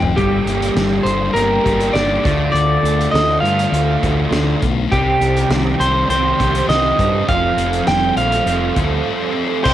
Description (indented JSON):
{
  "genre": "indie rock",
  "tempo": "101 BPM",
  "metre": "4/4",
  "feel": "straight",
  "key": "unclear",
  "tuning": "A4 = 440 Hz",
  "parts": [
    { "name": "electric guitar at the edge of break-up", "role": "melody", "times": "0.0-9.7 s", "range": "G4 to G5", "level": "-18 LUFS", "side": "right 1 dB", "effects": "cassette tape" },
    { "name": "thick fuzz guitar", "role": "riff", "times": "0.0-9.7 s", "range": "C3 to A4", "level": "-21 LUFS", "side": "left 7 dB", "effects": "distortion, cassette tape" },
    { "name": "growling fingered electric bass", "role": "bass", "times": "0.0-9.7 s", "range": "F1 to G2", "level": "-20 LUFS", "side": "equal", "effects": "overdrive" },
    { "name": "loose indie drum kit", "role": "drums", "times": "0.0-9.7 s", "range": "crash cymbal, hi-hat, kick drum, snare drum, toms", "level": "-23 LUFS", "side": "equal", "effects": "none" },
    { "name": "raw garage guitar", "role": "riff", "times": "0.2-9.7 s", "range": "F2 to G4", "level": "-22 LUFS", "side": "right 8 dB", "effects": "overdrive, ensemble chorus, cassette tape" }
  ],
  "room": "light reverb",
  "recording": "home recording on cassette",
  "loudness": "-14 LUFS",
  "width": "side -12 dB against mid",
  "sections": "0.2-9.6 A section",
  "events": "drum fill 0.0; break 9.1-9.6",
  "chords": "0.2 Gm; 2.2 Dm; 4.9 Cm; 7.3 Fadd9"
}